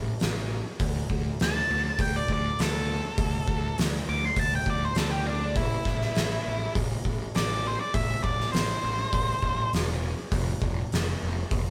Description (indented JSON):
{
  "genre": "blues rock power trio and southern rock",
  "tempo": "101 BPM",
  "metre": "4/4",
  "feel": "straight",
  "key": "A minor",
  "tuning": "A4 = 439 Hz",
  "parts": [
    { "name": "fuzz picked electric bass", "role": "bass", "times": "0.0-11.7 s", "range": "E1 to D2", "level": "-33 LUFS", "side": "equal", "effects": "overdrive" },
    { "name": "oversized low-tuned drum kit", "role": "drums", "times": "0.2-11.7 s", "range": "hi-hat, kick drum, snare drum", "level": "-31 LUFS", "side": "equal", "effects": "none" },
    { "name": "octave-fuzz lead guitar", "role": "melody", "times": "1.4-9.7 s", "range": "D4 to D6", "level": "-32 LUFS", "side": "equal", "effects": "distortion" }
  ],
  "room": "moderate studio reverb, RT60 0.8 s",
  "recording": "band playing live in one room",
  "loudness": "-28 LUFS",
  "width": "mono",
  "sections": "0.0-11.7 A section",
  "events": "lead electric guitar solo 0.0-11.7",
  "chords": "0.0 N.C.; 0.8 D5; 5.6 Am; 10.3 F5"
}